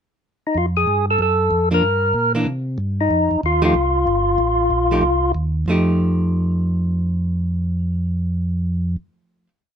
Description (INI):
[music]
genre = jazz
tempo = 188 BPM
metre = 4/4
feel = swing 62% on 8ths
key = F mixolydian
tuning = A4 = 440 Hz
[part]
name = percussive tonewheel organ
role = melody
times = 0.5-5.3 s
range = Eb4 to Bb4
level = -17 LUFS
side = left 1 dB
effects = slow rotary speaker, overdrive
[part]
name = mellow tonewheel organ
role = bass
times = 0.5-9.0 s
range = G1 to C3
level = -20 LUFS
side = equal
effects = slow rotary speaker
[part]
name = archtop guitar, miked and amplified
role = accompaniment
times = 1.7-9.5 s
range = E3 to G4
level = -22 LUFS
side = right 1 dB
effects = none
[sound]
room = light reverb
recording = dark, warm production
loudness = -17 LUFS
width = side -8 dB against mid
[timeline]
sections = 0.0-0.6 pickup bar; 0.6-5.7 A section; 5.7-8.2 final chord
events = none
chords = 0.0 N.C.; 0.6 Fsus2; 1.2 Fadd11; 1.8 Gm; 2.5 C5; 3.1 F9